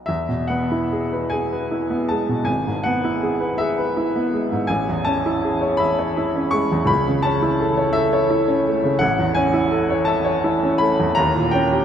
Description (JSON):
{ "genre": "classical, romantic nocturne for solo piano", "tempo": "55 BPM (dotted quarters)", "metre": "6/8", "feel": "rubato", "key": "E major", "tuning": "A4 = 439 Hz", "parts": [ { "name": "clear upright piano", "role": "solo", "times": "0.0-11.8 s", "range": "G#1 to C#6", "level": "-18 LUFS", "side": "equal", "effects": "none" } ], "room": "wet huge ambient reverb, RT60 6.9 s", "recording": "in a vast, echoing space", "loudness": "-18 LUFS", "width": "side -8 dB against mid", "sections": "0.1-11.8 A section", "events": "none", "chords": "0.1 E; 2.5 E/G#; 4.7 Amaj7; 6.9 A/C#; 9.0 A; 11.2 D#7", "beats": "| 0.08 1.32 | 2.48 3.59 | 4.70 5.80 | 6.88 7.95 | 9.02 10.08 | 11.17" }